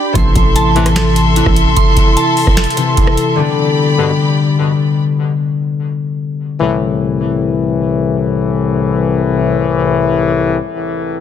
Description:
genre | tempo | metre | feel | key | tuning
hip hop, trap | 149 BPM | 4/4 | half-time | A minor | A4 = 440 Hz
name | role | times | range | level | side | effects
warm chamber string section | sustained chords | 0.0-5.0 s | G4 to C6 | -19 LUFS | left 4 dB | none
glassy digital keys | arpeggios | 0.0-3.4 s | D4 to C6 | -18 LUFS | right 4 dB | chorus, low-pass filter, digital delay
concert harp | accompaniment | 0.1-6.6 s | C3 to G4 | -16 LUFS | left 5 dB | low-pass filter
growling 808-style bass | bass | 0.2-1.8 s | A1 | -14 LUFS | right 1 dB | none
booming analog drum machine | drums | 0.2-3.3 s | finger snaps, hi-hat, kick drum, rim click, snare drum | -13 LUFS | right 1 dB | none
warm brass ensemble | stabs | 0.8-0.9, 4.0-4.1, 6.6-10.6 s | C2 to E3 | -15 LUFS | left 5 dB | digital delay
room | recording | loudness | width
little or no reverb | dense, heavily limited modern master | -11 LUFS | side -9 dB against mid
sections
0.0-6.6 A section; 6.6-9.8 B section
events
none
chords
0.2 Am; 3.4 G; 6.6 Am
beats
| 0.15 0.56 0.96 1.36 | 1.76 2.17 2.57 2.97 | 3.38 3.78 4.18 4.58 | 4.99 5.39 5.79 6.19 | 6.60 7.00 7.40 7.80 | 8.21 8.61 9.01 9.42

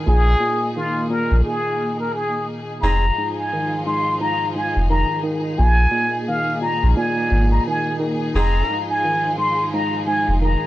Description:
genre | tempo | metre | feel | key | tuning
hip hop | 87 BPM | 4/4 | swing 61% on 16ths | F minor | A4 = 439 Hz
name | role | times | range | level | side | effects
mellow tine electric piano | accompaniment | 0.0-10.7 s | Ab2 to Eb3 | -25 LUFS | equal | medium stereo tremolo, high-pass filter, low-pass filter
warm studio string section | sustained chords | 0.0-10.7 s | F3 to Ab4 | -29 LUFS | left 1 dB | high-pass filter, low-pass filter
trumpet with plunger mute | melody | 0.1-10.7 s | F4 to C6 | -21 LUFS | equal | high-pass filter, low-pass filter
warm sub bass | bass | 0.1-10.6 s | F1 to Bb1 | -16 LUFS | equal | tube saturation
dark saxophone section | stabs | 2.8-3.0, 8.3-8.8 s | C4 to Ab4 | -28 LUFS | equal | high-pass filter, low-pass filter, tape echo
room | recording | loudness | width
little or no reverb | dry, gritty hardware recording, cassette tape | -17 LUFS | side -15 dB against mid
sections
0.0-2.8 A section; 2.8-10.7 B section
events
stop 1.4-2.8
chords
0.1 Bb7sus4; 2.8 Fm7; 5.6 Bb7sus4; 8.3 Fm7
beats
| 0.07 0.76 1.45 2.14 | 2.83 3.52 4.21 4.89 | 5.58 6.27 6.96 7.65 | 8.34 9.03 9.72 10.41

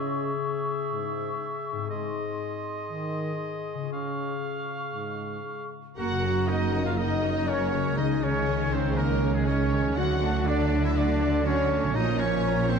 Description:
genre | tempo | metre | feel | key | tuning
cinematic | 120 BPM | 4/4 | straight | Gb lydian | A4 = 443 Hz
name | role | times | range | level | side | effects
clear oboe | second line | 0.0-12.8 s | Ab4 to Gb5 | -36 LUFS | right 2 dB | none
mellow clarinet | second line | 0.0-5.7 s | Ab4 | -36 LUFS | left 4 dB | none
mellow hollow large flute ensemble | second line | 0.0-12.8 s | Ab4 to Db6 | -35 LUFS | left 3 dB | none
dark trombone section | sustained chords | 0.0-12.8 s | Ab2 to Bb3 | -35 LUFS | right 4 dB | none
concert harp | arpeggios | 0.0-12.8 s | Gb2 to Db6 | -33 LUFS | left 9 dB | none
warm symphonic violin section | melody | 6.0-12.8 s | Ab4 to Gb5 | -36 LUFS | left 4 dB | none
warm symphonic violin section | second line | 6.0-12.8 s | A4 to Db6 | -40 LUFS | left 1 dB | none
warm symphonic viola section | accompaniment | 6.0-12.8 s | Eb3 to Bb4 | -35 LUFS | right 3 dB | none
clear French horn section | sustained chords | 6.0-12.8 s | Ab3 to F#4 | -30 LUFS | left 2 dB | none
clear trumpet | stabs | 6.0-12.8 s | Ab3 to Gb4 | -33 LUFS | right 2 dB | none
rich symphonic cello section | bass | 6.0-12.8 s | Gb2 to D3 | -31 LUFS | right 3 dB | none
warm symphonic double bass section | bass | 6.0-12.8 s | Gb1 to D2 | -29 LUFS | right 4 dB | none
room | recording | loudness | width
moderate concert hall reverb, RT60 2.2 s | dark, warm production | -24 LUFS | side -6 dB against mid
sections
0.0-6.0 A section; 6.0-12.8 B section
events
build-up 0.0-6.0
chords
0.0 Dbm; 1.9 Ab; 3.9 Db; 6.0 Gb; 8.0 Dbsus2; 10.0 D; 11.9 Bbm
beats
0.40 0.90 1.41 | 1.91 2.41 2.91 3.41 | 3.93 4.44 4.96 5.47 | 5.99 6.49 6.99 7.49 | 7.99 8.48 8.98 9.48 | 9.97 10.47 10.96 11.46 | 11.95 12.44

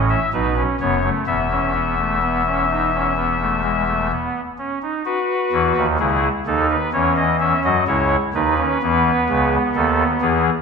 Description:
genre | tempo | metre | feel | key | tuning
classical, baroque-style 3-part fugue for pipe organ | 64 BPM | 4/4 | straight | E major | A4 = 437 Hz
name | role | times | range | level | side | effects
pipe organ, soft reed | solo | 0.0-10.5 s | E1 to E5 | -16 LUFS | left 1 dB | none
room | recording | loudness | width
wet recital hall reverb, RT60 1.4 s | none | -17 LUFS | side -5 dB against mid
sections
0.0-5.1 A section; 5.1-10.6 B section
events
none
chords
0.3 B7; 1.3 E5; 5.1 E; 6.9 C#m11; 8.8 E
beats
0.33 | 1.27 2.21 3.16 4.11 | 5.05 6.00 6.93 7.87 | 8.81 9.74

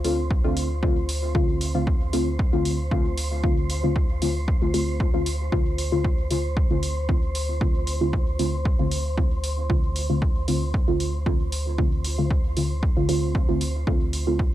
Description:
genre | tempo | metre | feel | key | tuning
dub techno | 115 BPM | 4/4 | straight | D minor | A4 = 439 Hz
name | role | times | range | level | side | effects
deep mellow chord stab | stabs | 0.0-14.4 s | D3 to F4 | -26 LUFS | left 1 dB | chorus, phaser, sidechain pumping, dub echo
pure sine sub bass | bass | 0.0-14.5 s | D2 | -28 LUFS | equal | sidechain pumping
electronic hi-hat | drums | 0.0-14.2 s | none | -33 LUFS | right 1 dB | none
wind-like tuned noise texture | texture | 0.0-14.5 s | C5 | -35 LUFS | right 2 dB | built-in reverb, sidechain pumping
electronic kick drum | drums | 0.3-14.5 s | none | -23 LUFS | equal | none
room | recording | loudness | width
digital ambience | dry, gritty hardware recording | -21 LUFS | side -14 dB against mid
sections
0.0-14.5 A section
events
filter sweep on synth stab 0.0-14.5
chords
0.0 Dm7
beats
0.31 0.83 | 1.35 1.87 2.39 2.92 | 3.44 3.96 4.48 5.00 | 5.52 6.04 6.57 7.09 | 7.61 8.13 8.65 9.18 | 9.70 10.22 10.74 11.26 | 11.78 12.31 12.83 13.35 | 13.87 14.39

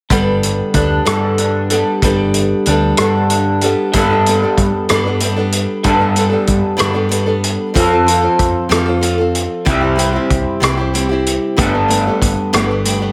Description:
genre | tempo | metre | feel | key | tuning
folk rock and heartland rock | 63 BPM (dotted quarters) | 6/8 | straight | G mixolydian | A4 = 442 Hz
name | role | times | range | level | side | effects
picked old ladder-braced acoustic guitar | accompaniment | 0.1-13.1 s | G2 to A4 | -20 LUFS | equal | none
electric guitar through a small old amp | riff | 0.1-13.1 s | C3 to A4 | -19 LUFS | equal | lush chorus
hollow-body short-scale picked electric bass | bass | 0.1-13.1 s | G1 to G2 | -21 LUFS | equal | none
vintage drum kit | drums | 0.1-13.0 s | hi-hat, kick drum, rim click | -21 LUFS | equal | none
room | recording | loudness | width
moderate large studio reverb, RT60 0.9 s, small room ambience | none | -15 LUFS | mono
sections
0.1-3.9 A section; 3.9-13.1 B section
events
none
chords
0.1 Gadd9; 7.8 F; 9.7 C; 11.6 Gadd9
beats
| 0.10 1.06 | 2.02 2.98 | 3.94 4.90 | 5.86 6.81 | 7.77 8.73 | 9.68 10.63 | 11.59 12.54

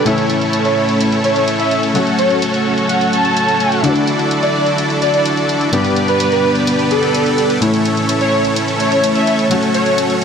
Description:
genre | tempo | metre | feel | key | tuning
EDM, festival progressive house | 127 BPM | 4/4 | straight | unclear | A4 = 437 Hz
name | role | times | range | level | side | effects
warm baby grand piano | accompaniment | 0.0-10.2 s | G2 to G4 | -20 LUFS | left 3 dB | none
warm studio string section | sustained chords | 0.0-10.2 s | C#3 to C#5 | -22 LUFS | equal | none
dense compressed supersaw | riff | 0.0-10.2 s | A3 to D5 | -16 LUFS | right 1 dB | cassette tape, low-pass filter, dub echo
electronic hi-hat | drums | 0.1-10.2 s | none | -25 LUFS | equal | overdrive, low-pass filter on hats, low-pass filter on room
airy dreamy lead | melody | 0.7-9.9 s | A4 to A5 | -18 LUFS | right 1 dB | chorus, cassette tape, dub echo
room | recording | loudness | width
moderate lush hall reverb, RT60 1.9 s, small room ambience | none | -12 LUFS | side -7 dB against mid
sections
0.0-10.2 A section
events
none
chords
0.1 A; 1.9 F#m; 3.8 Dadd9; 5.7 G; 7.6 A; 9.5 F#m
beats
| 0.06 0.53 1.00 1.48 | 1.95 2.42 2.90 3.37 | 3.84 4.31 4.79 5.26 | 5.73 6.20 6.67 7.15 | 7.62 8.09 8.56 9.04 | 9.51 9.98

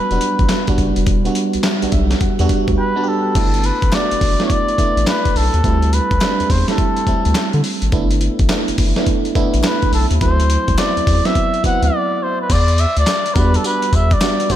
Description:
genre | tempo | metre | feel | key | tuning
R&B, new jack swing | 105 BPM | 4/4 | swing 65% on 16ths | E minor | A4 = 440 Hz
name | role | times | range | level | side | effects
trumpet with cup mute | melody | 0.0-14.6 s | A4 to F#5 | -20 LUFS | left 1 dB | slapback echo
FM electric piano | accompaniment | 0.0-14.6 s | F#3 to A5 | -20 LUFS | right 3 dB | chorus, slapback echo
round analog bass | bass | 0.1-14.6 s | E1 to D3 | -17 LUFS | equal | none
dusty soul sampler-style drum kit | drums | 0.1-14.6 s | crash cymbal, handclaps, hi-hat, kick drum, snare drum, tambourine | -18 LUFS | equal | overdrive
group handclap | percussion | 3.9-14.4 s | none | -36 LUFS | left 6 dB | none
room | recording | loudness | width
moderate lush hall reverb, RT60 2.9 s | big arena sound | -14 LUFS | side -11 dB against mid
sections
0.0-3.4 A section; 3.4-12.5 B section; 12.5-14.6 C section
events
FM electric piano fill 1.6-3.4; silent gap 2.8-3.4; break 11.9-12.5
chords
0.0 Em9; 3.4 G69; 5.6 D7sus4; 7.9 G69; 10.2 D13; 12.5 Em7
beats
0.50 | 1.07 1.64 2.21 2.78 | 3.35 3.93 4.50 5.07 | 5.64 6.21 6.78 7.35 | 7.93 8.50 9.07 9.64 | 10.21 10.78 11.35 11.93 | 12.50 13.07 13.64 14.21

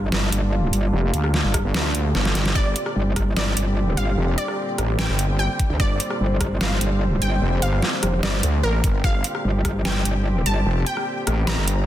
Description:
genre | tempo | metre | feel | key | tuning
heavy wobble dubstep | 148 BPM | 4/4 | half-time | G minor | A4 = 440 Hz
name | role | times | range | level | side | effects
warm studio string section | sustained chords | 0.0-11.9 s | Bb2 to C5 | -29 LUFS | equal | sidechain pumping, low-pass filter
metallic wobble bass | bass | 0.0-10.6 s | F1 to D2 | -21 LUFS | equal | chorus, overdrive
dubstep drum kit | drums | 0.1-11.8 s | hi-hat, rim click, snare drum | -26 LUFS | equal | none
wobble bass | bass | 0.9-11.9 s | F1 to D2 | -21 LUFS | equal | chorus, overdrive
electronic kick drum | drums | 1.5-9.7 s | none | -22 LUFS | equal | none
wide unison pluck | melody | 2.6-11.8 s | Bb4 to Bb5 | -28 LUFS | equal | ping-pong delay
room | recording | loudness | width
little or no reverb | dense, heavily limited modern master | -19 LUFS | side -12 dB against mid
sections
0.0-11.9 A section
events
kick drops out 1.7-2.6; drum fill 2.1-2.6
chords
0.0 Gm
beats
0.12 0.53 | 0.93 1.34 1.74 2.15 | 2.55 2.96 3.37 3.77 | 4.18 4.58 4.99 5.39 | 5.80 6.20 6.61 7.01 | 7.42 7.83 8.23 8.63 | 9.04 9.45 9.85 10.26 | 10.66 11.07 11.47

